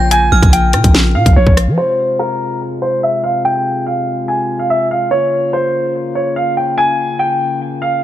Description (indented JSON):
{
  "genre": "hip hop, drill",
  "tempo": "144 BPM",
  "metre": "4/4",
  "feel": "half-time",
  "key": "F minor",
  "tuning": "A4 = 440 Hz",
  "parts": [
    { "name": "dark concert grand piano", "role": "melody", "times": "0.0-8.0 s", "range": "Bb4 to Ab5", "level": "-15 LUFS", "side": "equal", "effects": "low-pass filter, ping-pong delay" },
    { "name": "metallic FM bell", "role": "second line", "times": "0.0-0.5 s", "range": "F6 to G6", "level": "-21 LUFS", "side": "right 4 dB", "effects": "chorus, ping-pong delay" },
    { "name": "mellow brass ensemble", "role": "sustained chords", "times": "0.0-8.0 s", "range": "C3 to F4", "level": "-22 LUFS", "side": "left 2 dB", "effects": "stereo widening, low-pass filter" },
    { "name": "growling 808-style bass", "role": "bass", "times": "0.0-1.8 s", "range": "Bb1 to F3", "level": "-12 LUFS", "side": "equal", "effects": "none" },
    { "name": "drill drum kit", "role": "drums", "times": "0.1-1.7 s", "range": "hi-hat, kick drum, rim click, snare drum", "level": "-11 LUFS", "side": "equal", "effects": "none" }
  ],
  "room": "light reverb",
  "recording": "none",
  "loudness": "-12 LUFS",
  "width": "side -12 dB against mid",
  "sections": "0.0-1.8 A section; 1.8-8.0 B section",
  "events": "filter sweep 1.8-8.0",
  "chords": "0.0 Bbm; 1.8 Fm; 5.1 Bbm"
}